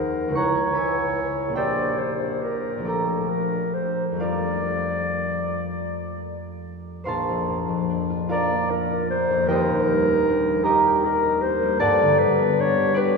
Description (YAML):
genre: classical, impressionist duo for clarinet and harp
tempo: 39-53 BPM (dotted quarters)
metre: 6/8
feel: rubato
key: F major, Bb major from 7.1 s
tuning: A4 = 441 Hz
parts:
  - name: mellow clarinet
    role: melody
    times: 0.0-13.2 s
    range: G4 to D5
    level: -24 LUFS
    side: left 1 dB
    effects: none
  - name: concert harp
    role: accompaniment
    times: 0.0-13.2 s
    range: Eb1 to D6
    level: -23 LUFS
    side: equal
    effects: none
room: wet cathedral reverb, RT60 4.9 s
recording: recorded in a church or concert hall, studio reverb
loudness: -20 LUFS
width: side -4 dB against mid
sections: 0.0-7.1 A section; 7.1-13.2 B section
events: none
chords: 0.4 Dbm7; 1.6 Bb69; 2.9 Bbmaj7; 4.2 F69; 7.1 Bbadd9; 9.5 Ebmaj7; 11.8 Gadd9